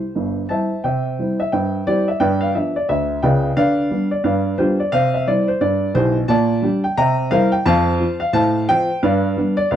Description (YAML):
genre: jazz, stride piano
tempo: 176 BPM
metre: 4/4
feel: swing 62% on 8ths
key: C major, F major from 6.3 s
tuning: A4 = 435 Hz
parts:
  - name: dark upright piano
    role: solo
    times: 0.0-9.8 s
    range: G1 to Bb5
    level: -16 LUFS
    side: equal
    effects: none
room: light reverb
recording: dark, warm production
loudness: -16 LUFS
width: side -10 dB against mid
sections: 0.8-9.8 A section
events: none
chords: 0.0 C; 2.2 G7; 3.6 G7/D; 4.9 C; 6.3 Gm/Bb; 7.0 C7; 7.7 F; 8.3 F/A; 9.0 G7